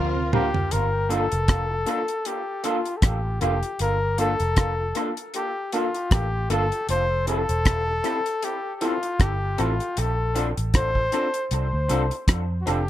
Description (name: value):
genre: lovers rock reggae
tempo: 78 BPM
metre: 4/4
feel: swing 56% on 16ths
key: unclear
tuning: A4 = 441 Hz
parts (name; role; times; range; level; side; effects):
- warm flugelhorn; melody; 0.0-12.9 s; F4 to C5; -26 LUFS; left 2 dB; tape echo, plate reverb
- phased string machine; second line; 0.0-0.7 s; C4 to F5; -35 LUFS; right 1 dB; ensemble chorus, phaser, dub echo, plate reverb
- vintage muted fingered electric bass; bass; 0.0-12.9 s; E1 to F2; -26 LUFS; equal; none
- mellow tonewheel organ; accompaniment; 0.2-0.6 s; C3 to C4; -34 LUFS; right 6 dB; none
- tine electric piano; accompaniment; 0.3-12.8 s; Bb3 to A4; -31 LUFS; left 3 dB; overdrive, medium stereo tremolo, dub echo, plate reverb
- electric guitar through a small old amp; stabs; 0.3-12.8 s; Bb3 to Bb4; -31 LUFS; right 3 dB; wide subtle chorus, dub echo, plate reverb
- deep reggae drum kit; drums; 0.3-12.9 s; hi-hat, kick drum, rim click, toms; -24 LUFS; equal; dub echo
room: light reverb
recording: none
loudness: -21 LUFS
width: side -13 dB against mid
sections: 0.7-12.9 A section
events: drum fill 0.0-0.7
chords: 0.0 C7sus4; 0.7 Gm9; 6.9 Fmaj7; 10.0 Bbmaj9